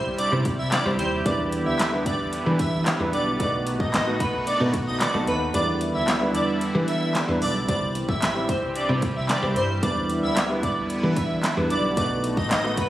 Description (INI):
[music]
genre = dance-pop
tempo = 112 BPM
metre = 4/4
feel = straight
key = E minor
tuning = A4 = 440 Hz
[part]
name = clear concert grand piano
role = accompaniment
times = 0.0-12.9 s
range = G3 to C5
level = -28 LUFS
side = right 1 dB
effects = sidechain pumping
[part]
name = sweeping resonant pad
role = sustained chords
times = 0.0-12.9 s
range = C3 to G4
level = -29 LUFS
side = right 1 dB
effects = chorus, sidechain pumping
[part]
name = woody fretless electric bass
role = bass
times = 0.0-12.9 s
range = A1 to E3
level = -28 LUFS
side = equal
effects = lush chorus, sidechain pumping
[part]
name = impact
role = sound effects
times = 0.0-1.3 s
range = none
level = barely audible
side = none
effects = none
[part]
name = airy dreamy lead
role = melody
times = 0.2-12.9 s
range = B4 to E5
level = -27 LUFS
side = equal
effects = chorus, sidechain pumping, ping-pong delay
[part]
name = pop drum kit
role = drums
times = 0.2-12.9 s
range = handclaps, hi-hat, kick drum, snare drum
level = -26 LUFS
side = equal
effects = none
[sound]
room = light reverb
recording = recorded on a phone in the room, studio reverb, compression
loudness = -21 LUFS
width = side -14 dB against mid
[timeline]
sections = 0.0-12.9 A section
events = impact 0.0-1.3; kick muted 5.5-7.7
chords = 0.0 C; 1.3 Em7; 3.4 B7; 5.5 Em7; 7.7 C; 9.8 Em7; 12.0 B7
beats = 0.19 0.72 | 1.26 1.79 2.33 2.86 | 3.40 3.94 4.47 5.01 | 5.54 6.08 6.61 7.15 | 7.69 8.22 8.76 9.29 | 9.83 10.36 10.90 11.44 | 11.97 12.51